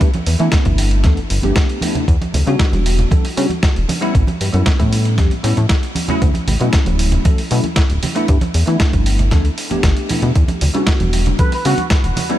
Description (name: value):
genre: nu-disco, nu disco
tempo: 116 BPM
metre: 4/4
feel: straight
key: unclear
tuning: A4 = 440 Hz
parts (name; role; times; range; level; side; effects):
- bell-like tine electric piano; accompaniment; 0.0-12.4 s; F#3 to A4; -21 LUFS; equal; ensemble chorus, sidechain pumping, tape echo
- chorused synth bass; bass; 0.0-12.1 s; D1 to E3; -16 LUFS; equal; none
- dusty soul sampler-style drum kit; drums; 0.0-12.4 s; hi-hat, snare drum; -22 LUFS; equal; small room ambience
- electronic kick drum; drums; 0.0-12.0 s; none; -14 LUFS; equal; small room ambience
- congas; percussion; 0.1-12.3 s; none; -24 LUFS; right 3 dB; none
- muted trumpet section; melody; 11.4-11.8 s; F#4 to B4; -21 LUFS; right 3 dB; diffuse ambient delay
room: digital ambience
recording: none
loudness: -13 LUFS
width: side -13 dB against mid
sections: 0.0-12.4 A section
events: none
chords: 0.0 G6; 2.1 Em7; 4.2 A7; 6.0 Dmaj7; 8.0 G6; 10.4 Em7